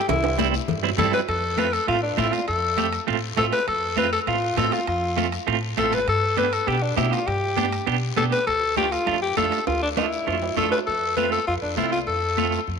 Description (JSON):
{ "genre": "latin, cumbia", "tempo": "200 BPM", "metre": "4/4", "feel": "straight", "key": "unclear", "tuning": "A4 = 440 Hz", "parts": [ { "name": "raspy alto saxophone", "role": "melody", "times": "0.0-12.6 s", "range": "D4 to B4", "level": "-23 LUFS", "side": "left 3 dB", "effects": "tape echo" }, { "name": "upright bass", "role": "bass", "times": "0.1-12.8 s", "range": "G1 to B2", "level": "-29 LUFS", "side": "equal", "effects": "none" }, { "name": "congas", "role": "percussion", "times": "0.1-12.8 s", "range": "none", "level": "-31 LUFS", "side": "left 14 dB", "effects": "none" }, { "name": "cowbell and timbales", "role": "percussion", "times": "0.1-10.8 s", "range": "none", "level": "-32 LUFS", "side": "right 13 dB", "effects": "none" }, { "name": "guiro", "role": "percussion", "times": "0.1-12.8 s", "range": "none", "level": "-37 LUFS", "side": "left 15 dB", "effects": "none" }, { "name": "semi-hollow electric guitar", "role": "accompaniment", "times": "0.4-12.6 s", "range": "G3 to G4", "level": "-26 LUFS", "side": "right 13 dB", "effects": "tremolo" } ], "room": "moderate plate reverb, RT60 2.6 s", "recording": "1960s-style stereo with parts hard left and right", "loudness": "-20 LUFS", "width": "side -6 dB against mid", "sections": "0.0-1.3 A section; 1.3-10.9 B section; 10.9-12.8 C section", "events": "drum fill 0.1-1.3, 9.7-10.9", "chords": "0.0 C; 1.3 F; 6.1 G; 8.5 Dmadd9; 10.9 F", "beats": "| 0.09 0.39 0.69 0.98 | 1.28 1.58 1.88 2.18 | 2.48 2.78 3.08 3.38 | 3.68 3.98 4.28 4.58 | 4.88 5.18 5.48 5.78 | 6.08 6.38 6.67 6.97 | 7.28 7.57 7.87 8.17 | 8.47 8.77 9.07 9.37 | 9.67 9.97 10.27 10.57 | 10.87 11.17 11.47 11.78 | 12.08 12.38 12.68" }